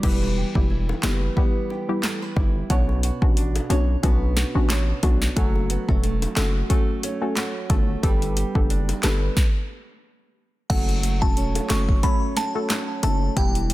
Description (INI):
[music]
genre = dancehall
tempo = 90 BPM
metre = 4/4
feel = swing 56% on 16ths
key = unclear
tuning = A4 = 440 Hz
[part]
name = soft round pluck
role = accompaniment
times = 0.0-13.6 s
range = G3 to A4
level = -28 LUFS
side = left 2 dB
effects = chorus
[part]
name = flamenco guitar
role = arpeggios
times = 0.0-13.7 s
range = B2 to C#5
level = -31 LUFS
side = right 5 dB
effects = none
[part]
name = hard-hitting 808-style bass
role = bass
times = 0.0-13.7 s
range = E1 to B1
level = -23 LUFS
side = equal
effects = none
[part]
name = afro-pop drum kit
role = drums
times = 0.0-13.7 s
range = crash cymbal, handclaps, hi-hat, kick drum, snare drum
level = -22 LUFS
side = equal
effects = none
[part]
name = bongos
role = percussion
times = 0.2-13.2 s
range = none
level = -37 LUFS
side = left 5 dB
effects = none
[part]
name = glassy synth bell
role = melody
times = 10.7-13.6 s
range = F#5 to C#6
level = -28 LUFS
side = equal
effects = chorus, tremolo, digital delay
[sound]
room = little or no reverb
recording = dense, heavily limited modern master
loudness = -20 LUFS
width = side -17 dB against mid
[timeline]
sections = 0.0-10.7 A section; 10.7-13.7 B section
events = stop 9.4-10.7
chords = 0.0 Em; 2.7 Bmadd9; 5.4 F#m; 8.0 Gadd9; 10.7 F#m